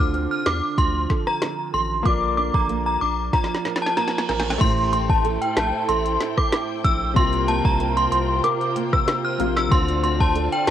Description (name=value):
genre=dancehall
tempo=94 BPM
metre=4/4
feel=straight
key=A phrygian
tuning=A4 = 443 Hz
part: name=synth chime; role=melody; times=0.0-10.7 s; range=G5 to F6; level=-22 LUFS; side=left 1 dB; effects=ensemble chorus, phaser, cassette tape, tape echo
part: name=bright grand piano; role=accompaniment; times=0.0-10.7 s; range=C3 to D5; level=-30 LUFS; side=left 10 dB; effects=sidechain pumping, cassette tape
part: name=nylon-string guitar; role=arpeggios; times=0.0-10.7 s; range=A2 to Bb4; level=-28 LUFS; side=right 10 dB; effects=cassette tape, tape echo
part: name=saturated sub bass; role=bass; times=0.0-10.7 s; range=A1 to E2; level=-27 LUFS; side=equal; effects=none
part: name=afro-pop drum kit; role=drums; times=0.1-10.7 s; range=crash cymbal, hi-hat, kick drum, rim click, snare drum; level=-22 LUFS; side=equal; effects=cassette tape
part: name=reverse cymbal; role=sound effects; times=3.7-4.6 s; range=none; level=-34 LUFS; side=right 6 dB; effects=none
part: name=warm studio string section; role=sustained chords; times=4.6-10.7 s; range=E4 to A5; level=-31 LUFS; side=left 2 dB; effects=sidechain pumping, cassette tape
room=light reverb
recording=home recording on cassette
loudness=-19 LUFS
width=side -10 dB against mid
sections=0.0-4.6 A section; 4.6-10.7 B section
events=drum fill 3.3-4.6; reverse cymbal 3.7-4.6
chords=0.0 Dm7; 2.1 Bb; 4.6 Am7; 7.2 C7sus4; 9.7 Dm7